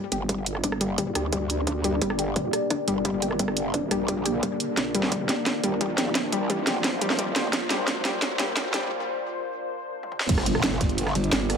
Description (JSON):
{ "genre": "dark technical drum and bass", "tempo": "174 BPM", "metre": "4/4", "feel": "straight", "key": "G minor", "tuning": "A4 = 442 Hz", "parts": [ { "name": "deep dark ambient pad", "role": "sustained chords", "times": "0.0-11.6 s", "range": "Bb3 to D5", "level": "-30 LUFS", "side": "left 1 dB", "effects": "chorus, built-in reverb, sidechain pumping" }, { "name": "analog pluck", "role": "arpeggios", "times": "0.0-8.8 s", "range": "G3 to G4", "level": "-30 LUFS", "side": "left 3 dB", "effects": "chorus, sidechain pumping, ping-pong delay" }, { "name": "riser and impact", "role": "sound effects", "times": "0.1-11.6 s", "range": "none", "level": "-34 LUFS", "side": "right 1 dB", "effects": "none" }, { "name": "growl bass", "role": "bass", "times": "0.1-11.6 s", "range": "F1 to D2", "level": "-29 LUFS", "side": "right 1 dB", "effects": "chorus, tube saturation, sidechain pumping" }, { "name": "drum and bass drum kit", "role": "drums", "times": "0.1-11.6 s", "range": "crash cymbal, hi-hat, rim click, snare drum, toms", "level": "-26 LUFS", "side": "right 2 dB", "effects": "none" }, { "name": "electronic kick drum", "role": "drums", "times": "0.3-10.9 s", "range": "none", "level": "-30 LUFS", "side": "right 1 dB", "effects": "high-pass filter on kick, high-pass filter on room" }, { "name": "breakbeat sampler-style drum kit", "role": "drums", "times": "10.3-11.6 s", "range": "ride cymbal, snare drum", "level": "-36 LUFS", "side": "right 2 dB", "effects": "high-pass filter on cymbals, high-pass filter on snare, high-pass filter on hats" } ], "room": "light reverb", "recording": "high-pass filter", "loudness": "-23 LUFS", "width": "side -6 dB against mid", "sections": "0.0-10.3 A section; 10.3-11.6 B section", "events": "build-up 0.0-10.3; filter sweep on synth arpeggio sound 0.0-10.3; riser 0.1-8.9; drum fill 4.8-8.9, 10.0; break 8.9-10.3; drop 10.3-11.6; impact 10.3-11.6", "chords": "0.0 Gm; 4.8 Bbadd9; 10.3 Gm", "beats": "0.29 | 0.64 0.98 1.32 1.67 | 2.02 2.36 2.71 3.05 | 3.39 3.74 4.08 4.43 | 4.77 5.12 5.46 5.81 | 6.15 6.50 6.84 7.19 | 7.53 7.88 8.22 8.57 | 8.91 9.26 9.60 9.95 | 10.29 10.64 10.98 11.32" }